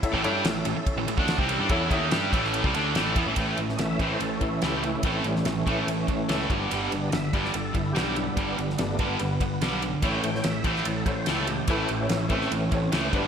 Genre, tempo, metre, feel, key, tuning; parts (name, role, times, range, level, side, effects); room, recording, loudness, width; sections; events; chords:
classic rock; 144 BPM; 4/4; straight; A mixolydian; A4 = 440 Hz
bright upright piano; accompaniment; 0.0-2.6, 10.0-13.3 s; D4 to E5; -33 LUFS; left 3 dB
overdriven tonewheel organ; sustained chords; 0.0-13.3 s; E3 to G5; -31 LUFS; equal; slow rotary speaker, chorus vibrato
damped 70s drum kit; drums; 0.0-13.2 s; kick drum, ride cymbal, snare drum; -30 LUFS; equal
cranked stack guitar; riff; 0.1-13.3 s; G2 to G4; -30 LUFS; left 8 dB; overdrive
tight distorted guitar; riff; 0.1-13.3 s; G2 to G4; -29 LUFS; right 9 dB; distortion, slapback echo
fuzz picked electric bass; bass; 0.1-13.3 s; G1 to G2; -32 LUFS; equal; overdrive
wet recital hall reverb, RT60 1.3 s; big arena sound; -23 LUFS; side -7 dB against mid
0.0-3.4 A section; 3.4-13.3 B section
tonewheel organ solo 3.4-13.3
0.0 A; 6.5 G; 10.0 A